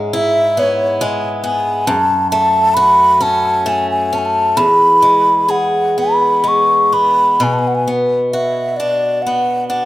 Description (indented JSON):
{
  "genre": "celtic folk, Celtic slow air",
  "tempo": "42-47 BPM (dotted quarters)",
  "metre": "6/8",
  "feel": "rubato",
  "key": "unclear",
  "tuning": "A4 = 440 Hz",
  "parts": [
    { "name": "picked swing-style acoustic guitar", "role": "accompaniment", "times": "0.0-9.9 s", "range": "E2 to G#4", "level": "-18 LUFS", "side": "left 1 dB", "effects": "none" },
    { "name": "breathy mellow wooden flute", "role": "melody", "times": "0.2-9.9 s", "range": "C#5 to C#6", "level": "-12 LUFS", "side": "equal", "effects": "none" }
  ],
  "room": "moderate recital hall reverb, RT60 1.5 s",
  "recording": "none",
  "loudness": "-11 LUFS",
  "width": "side -15 dB against mid",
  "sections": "0.0-9.9 A section",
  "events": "none",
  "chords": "0.0 E/G#; 1.9 F#m; 4.6 E; 7.4 Bm"
}